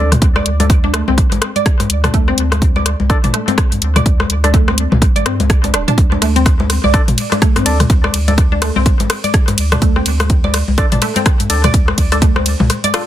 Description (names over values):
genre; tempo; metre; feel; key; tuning
minimal techno; 125 BPM; 4/4; swing 59% on 16ths; unclear; A4 = 441 Hz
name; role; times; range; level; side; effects
percussive organ stab; stabs; 0.0-13.0 s; D4 to D5; -23 LUFS; equal; chorus, tape echo
saturated sub bass; bass; 0.0-12.7 s; D1 to G2; -17 LUFS; right 1 dB; sidechain pumping
house drum kit; drums; 0.1-13.1 s; hi-hat, ride cymbal, rim click; -20 LUFS; left 1 dB; overdrive
organic electronic drum kit; percussion; 0.1-13.1 s; congas, rim click, toms; -18 LUFS; left 3 dB; soft clipping on snare, tape echo
electronic kick drum; drums; 0.2-12.3 s; none; -13 LUFS; equal; overdrive
resonant blip pluck; riff; 0.4-13.0 s; A3 to D5; -20 LUFS; right 1 dB; analog chorus, vintage 12-bit sampler grit, sidechain pumping, tape echo
room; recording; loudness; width
light reverb; dense, heavily limited modern master; -11 LUFS; side -12 dB against mid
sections
0.0-13.1 A section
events
break 12.7-13.1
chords
0.0 D5